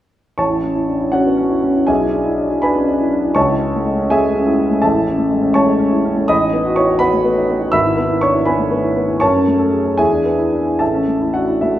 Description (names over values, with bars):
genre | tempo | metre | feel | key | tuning
classical, virtuoso piano study | 81 BPM (dotted quarters) | 6/8 | rubato | A major | A4 = 440 Hz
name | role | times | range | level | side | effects
warm grand piano | solo | 0.4-11.8 s | G#1 to E6 | -13 LUFS | equal | none
room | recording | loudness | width
wet recital hall reverb, RT60 1.4 s | none | -13 LUFS | side -13 dB against mid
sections
0.4-11.8 A section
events
none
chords
0.4 A; 1.9 E7/B; 3.4 A/C#; 4.8 A; 6.3 B7/A; 7.7 E/G#; 9.2 F#m; 10.0 E7; 10.8 A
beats
| 0.38 1.14 | 1.89 2.63 | 3.36 4.10 | 4.83 5.56 | 6.29 7.01 | 7.74 8.48 | 9.23 10.00 | 10.80 11.61